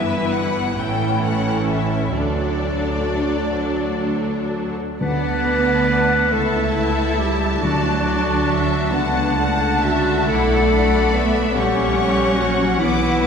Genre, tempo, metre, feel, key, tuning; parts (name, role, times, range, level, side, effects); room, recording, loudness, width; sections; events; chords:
classical; 41-49 BPM (dotted quarters); 6/8; rubato; D major; A4 = 439 Hz
rich symphonic violin section; melody; 0.0-13.3 s; D5 to D6; -28 LUFS; left 5 dB
clear symphonic violin section; second line; 0.0-13.3 s; D4 to A5; -24 LUFS; left 2 dB
rich symphonic viola section; accompaniment; 0.0-13.3 s; E3 to F#4; -24 LUFS; left 1 dB
rich symphonic cello section; bass; 0.0-13.3 s; D2 to B3; -24 LUFS; right 3 dB
rich symphonic double bass section; bass; 0.0-13.3 s; G1 to D2; -24 LUFS; right 2 dB
clear clarinet; second line; 5.0-13.3 s; D4 to B4; -21 LUFS; left 2 dB
timpani; percussion; 5.0-8.9 s; D3; -29 LUFS; right 2 dB
wet cathedral reverb, RT60 4.1 s; recorded in a church or concert hall; -17 LUFS; side -6 dB against mid
0.0-5.0 A section; 5.0-13.3 B section
0.0 Em/G; 0.8 A; 2.2 D; 6.3 A/C#; 7.6 D; 10.3 Bm7; 11.6 F#/A#